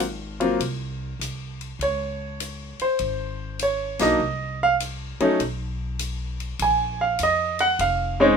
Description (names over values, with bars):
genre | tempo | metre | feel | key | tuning
jazz piano trio | 100 BPM | 4/4 | swing 67% on 8ths | Db major | A4 = 440 Hz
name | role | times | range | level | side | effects
upright bass | bass | 0.0-8.4 s | F1 to F2 | -31 LUFS | left 1 dB | none
open jazz drum kit | drums | 0.0-8.0 s | hi-hat, ride cymbal, snare drum | -34 LUFS | left 4 dB | none
clear grand piano | melody | 0.4-8.4 s | Gb3 to Ab5 | -20 LUFS | right 1 dB | none
room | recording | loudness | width
light reverb | minimal, uncompressed stereo recording | -22 LUFS | side -6 dB against mid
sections
0.0-8.4 A section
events
band accent 3.9-4.2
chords
0.0 Ab; 1.8 Db5; 4.2 Cm; 5.4 N.C.; 6.6 Bb7sus4